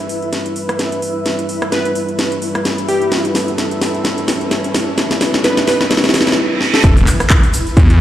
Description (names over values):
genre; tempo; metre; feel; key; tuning
bass house; 129 BPM; 4/4; swing 56% on 16ths; E minor; A4 = 440 Hz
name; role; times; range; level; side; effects
dark analog pad; sustained chords; 0.0-8.0 s; G3 to B4; -22 LUFS; equal; chorus, sidechain pumping
riser, reverse cymbal and impact; sound effects; 0.0-8.0 s; none; -22 LUFS; right 1 dB; none
granular cloud pad; texture; 0.0-8.0 s; E4 to E5; -24 LUFS; equal; built-in reverb, sidechain pumping
house drum kit; drums; 0.1-8.0 s; handclaps, hi-hat, ride cymbal, rim click, snare drum; -17 LUFS; equal; none
plucky unison lead; melody; 1.7-6.9 s; G4 to B4; -22 LUFS; equal; dub echo
phased detuned saw bass; bass; 6.8-8.0 s; E1 to E2; -11 LUFS; equal; phaser, sidechain pumping
electronic kick drum; drums; 6.8-7.9 s; none; -10 LUFS; equal; none
tube shaker; percussion; 6.8-7.9 s; none; -28 LUFS; left 3 dB; none
room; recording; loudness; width
moderate plate reverb, RT60 2.0 s; played on a big sound system in a bare room, large studio reverb; -13 LUFS; side -12 dB against mid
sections
0.0-6.8 A section; 6.8-8.0 B section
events
build-up 0.0-6.8; drum fill 0.0-6.4, 6.6; riser 0.0-6.4; reverse cymbal 5.9-6.8; drop 6.8-8.0; impact 6.8-8.0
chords
0.0 Em